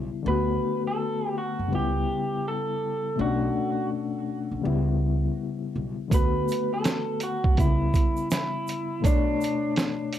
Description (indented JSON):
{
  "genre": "lo-fi hip hop",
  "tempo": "82 BPM",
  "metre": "4/4",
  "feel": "swing 63% on 16ths",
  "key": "B minor",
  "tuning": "A4 = 443 Hz",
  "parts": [
    { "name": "reed electric piano", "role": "accompaniment", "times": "0.0-10.2 s", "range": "B2 to C#5", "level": "-28 LUFS", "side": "left 6 dB", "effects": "fast tremolo, low-pass filter, cassette tape" },
    { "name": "upright bass", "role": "bass", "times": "0.0-9.3 s", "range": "B1 to F#2", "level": "-28 LUFS", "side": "right 2 dB", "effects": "transformer saturation" },
    { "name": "electric guitar through a small old amp", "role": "melody", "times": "0.3-9.7 s", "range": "D4 to B4", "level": "-30 LUFS", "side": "right 3 dB", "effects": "low-pass filter, cassette tape, tape echo" },
    { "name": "lo-fi sampler-style drum kit", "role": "drums", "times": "6.1-10.2 s", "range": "hi-hat, kick drum, snare drum", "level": "-23 LUFS", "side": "right 2 dB", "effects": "vintage 12-bit sampler grit, cassette tape" },
    { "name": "egg shaker", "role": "percussion", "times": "6.1-10.2 s", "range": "none", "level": "-43 LUFS", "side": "right 12 dB", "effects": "none" }
  ],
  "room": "moderate small room reverb, RT60 0.6 s",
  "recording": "home recording on cassette",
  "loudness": "-24 LUFS",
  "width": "side -11 dB against mid",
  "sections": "0.0-10.2 A section",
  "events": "none",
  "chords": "0.3 D6; 1.7 C#m7b5; 3.2 Bm9; 4.6 Em6; 6.1 D6; 7.6 C#m7b5; 9.0 Bm9",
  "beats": "| 0.26 0.99 1.72 2.45 | 3.18 3.91 4.65 5.38 | 6.11 6.84 7.57 8.30 | 9.04 9.77"
}